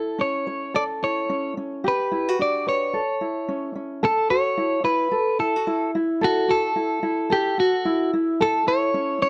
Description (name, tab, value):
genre	pop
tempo	110 BPM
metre	4/4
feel	swing 60% on 16ths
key	unclear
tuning	A4 = 440 Hz
part	clean electric guitar	melody	0.0-9.3 s	F#4 to D5	-25 LUFS	equal	none
part	tenor ukulele	accompaniment	0.0-9.3 s	C#4 to C#5	-26 LUFS	equal	none
room	small room reverb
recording	dry, close 1970s-style studio recording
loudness	-23 LUFS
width	mono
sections	0.0-4.0 A section; 4.0-9.3 B section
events	none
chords	0.0 A; 1.8 Gmaj7; 2.9 A; 4.0 Esus24; 8.4 A